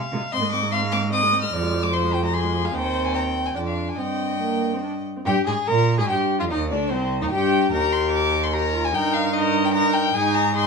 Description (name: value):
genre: quick classical-period movement for string quartet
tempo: 148 BPM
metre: 3/4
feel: rubato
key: unclear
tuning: A4 = 435 Hz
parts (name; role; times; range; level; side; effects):
- warm violin; second line; 0.0-10.7 s; C4 to G5; -26 LUFS; left 2 dB; none
- warm viola; accompaniment; 0.1-10.7 s; F3 to Bb4; -26 LUFS; equal; none
- rich cello; bass; 0.1-10.7 s; C2 to C3; -24 LUFS; right 3 dB; none
- rich violin; melody; 0.3-10.7 s; C5 to F6; -25 LUFS; left 4 dB; none
room: moderate studio reverb, RT60 0.5 s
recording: studio ambience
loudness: -19 LUFS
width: side -4 dB against mid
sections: 0.0-5.3 A section; 5.3-10.7 B section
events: none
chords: 0.3 Ab; 1.5 Fm; 2.7 Cm/Eb; 3.6 Fm6; 4.0 Cm/G; 4.8 G5; 5.3 Fmadd9 (rootless); 6.5 Cm; 7.7 Eb; 8.9 Eb/G; 10.1 Ab5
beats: | 0.33 0.73 1.13 | 1.53 1.93 2.33 | 2.74 3.15 3.56 | 3.98 4.41 4.83 | 5.26 5.68 6.09 | 6.50 6.91 7.32 | 7.73 8.13 8.53 | 8.94 9.35 9.74 | 10.15 10.56